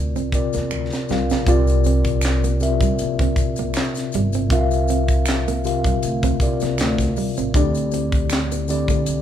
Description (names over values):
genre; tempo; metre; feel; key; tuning
R&B, neo-soul; 79 BPM; 4/4; swing 54% on 16ths; unclear; A4 = 441 Hz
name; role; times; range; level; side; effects
mellow tine electric piano; accompaniment; 0.0-9.2 s; C3 to F5; -22 LUFS; left 2 dB; medium stereo tremolo
upright bass; bass; 0.0-9.2 s; G1 to E2; -23 LUFS; equal; none
nylon-string guitar; second line; 0.2-9.0 s; G3 to F4; -26 LUFS; right 6 dB; none
tight funk drum kit; drums; 0.2-9.2 s; handclaps, hi-hat, kick drum, snare drum; -22 LUFS; equal; none
maracas and finger snaps; percussion; 0.2-9.2 s; none; -34 LUFS; equal; none
room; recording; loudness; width
light reverb; band playing live in one room; -17 LUFS; side -10 dB against mid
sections
0.0-1.5 A section; 1.5-9.2 B section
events
drum fill 0.7-1.5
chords
0.0 C9sus4; 7.5 D9sus4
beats
0.71 | 1.47 2.23 2.99 3.75 | 4.50 5.26 6.02 6.78 | 7.54 8.30 9.06